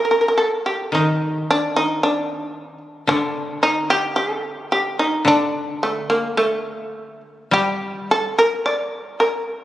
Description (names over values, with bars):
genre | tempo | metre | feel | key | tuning
japanese traditional, Japanese chamber music | 51-58 BPM | 2/4 | rubato | unclear | A4 = 441 Hz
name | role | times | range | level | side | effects
shamisen | melody | 0.0-9.6 s | A3 to D5 | -18 LUFS | equal | none
koto | accompaniment | 0.9-9.6 s | D3 to G3 | -24 LUFS | left 2 dB | none
room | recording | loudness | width
wet church reverb, RT60 2.6 s | recorded on a phone in the room, studio reverb | -18 LUFS | side -13 dB against mid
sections
0.0-9.6 A section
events
none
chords
none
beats
| 0.94 2.02 | 3.08 4.16 | 5.26 6.37 | 7.54 8.67